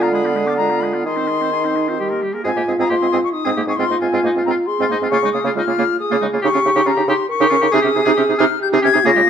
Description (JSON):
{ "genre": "quick classical-period movement for wind quintet", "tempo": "136 BPM", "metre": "3/4", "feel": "rubato", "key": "Ab major", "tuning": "A4 = 441 Hz", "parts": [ { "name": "silver concert flute", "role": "melody", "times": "0.0-9.3 s", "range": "Ab5 to Bb6", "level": "-20 LUFS", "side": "left 6 dB", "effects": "none" }, { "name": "clear oboe", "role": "second line", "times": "0.0-9.3 s", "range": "Eb4 to C5", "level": "-24 LUFS", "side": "left 3 dB", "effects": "none" }, { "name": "warm French horn", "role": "accompaniment", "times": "0.0-9.3 s", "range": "Eb4 to Bb4", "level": "-20 LUFS", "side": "equal", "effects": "none" }, { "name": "warm clarinet", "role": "accompaniment", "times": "0.0-9.3 s", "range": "G3 to Eb4", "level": "-23 LUFS", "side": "right 8 dB", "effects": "none" }, { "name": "mellow bassoon", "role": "bass", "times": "0.0-9.2 s", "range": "Ab2 to Eb3", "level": "-21 LUFS", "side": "right 2 dB", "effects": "none" } ], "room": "moderate recital hall reverb, RT60 1.6 s", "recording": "close, detailed microphones", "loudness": "-15 LUFS", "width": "side -8 dB against mid", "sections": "0.0-2.5 A section; 2.5-9.3 A section", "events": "none", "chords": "0.0 Ddim7; 1.1 Ab/Eb; 2.0 Eb; 2.5 Ab; 3.8 Fm/Ab; 5.1 Bbm/Db; 6.4 Eb7/Db; 7.7 Ab/C" }